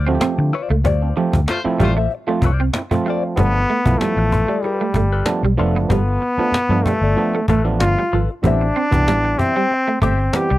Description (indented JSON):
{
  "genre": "funk",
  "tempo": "95 BPM",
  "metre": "4/4",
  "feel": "straight",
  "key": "unclear",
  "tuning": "A4 = 440 Hz",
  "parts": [
    { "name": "direct-recorded clean electric guitar", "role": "accompaniment", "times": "0.0-10.6 s", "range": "F4 to G5", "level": "-25 LUFS", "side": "left 6 dB", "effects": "wah" },
    { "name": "vintage muted fingered electric bass", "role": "bass", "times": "0.0-10.6 s", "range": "F1 to D3", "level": "-18 LUFS", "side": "left 1 dB", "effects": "none" },
    { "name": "semi-hollow electric guitar", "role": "riff", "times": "0.1-10.6 s", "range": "F3 to C4", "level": "-24 LUFS", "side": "right 6 dB", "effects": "ensemble chorus" },
    { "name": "mellow clav", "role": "stabs", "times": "0.1-10.5 s", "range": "E3 to G4", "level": "-22 LUFS", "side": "right 3 dB", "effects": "none" },
    { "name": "cajon", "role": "drums", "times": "0.1-10.6 s", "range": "none", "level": "-22 LUFS", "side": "left 1 dB", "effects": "none" },
    { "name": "clear horn section", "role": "second line", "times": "1.5-1.9 s", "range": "A3 to C5", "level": "-24 LUFS", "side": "left 3 dB", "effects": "none" },
    { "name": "brilliant trombone", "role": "melody", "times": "3.4-10.6 s", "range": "G3 to G4", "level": "-19 LUFS", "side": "left 1 dB", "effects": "none" }
  ],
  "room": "small room ambience",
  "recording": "dry, close 1970s-style studio recording",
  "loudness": "-15 LUFS",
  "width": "side -16 dB against mid",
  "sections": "0.0-3.4 A section; 3.4-10.6 B section",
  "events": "band accent 0.8-3.4",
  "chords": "0.0 Dm7; 3.4 G9; 8.4 Am7",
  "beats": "0.22 | 0.85 1.48 2.11 2.74 | 3.37 4.00 4.64 5.27 | 5.90 6.54 7.17 7.80 | 8.44 9.07 9.70 10.34"
}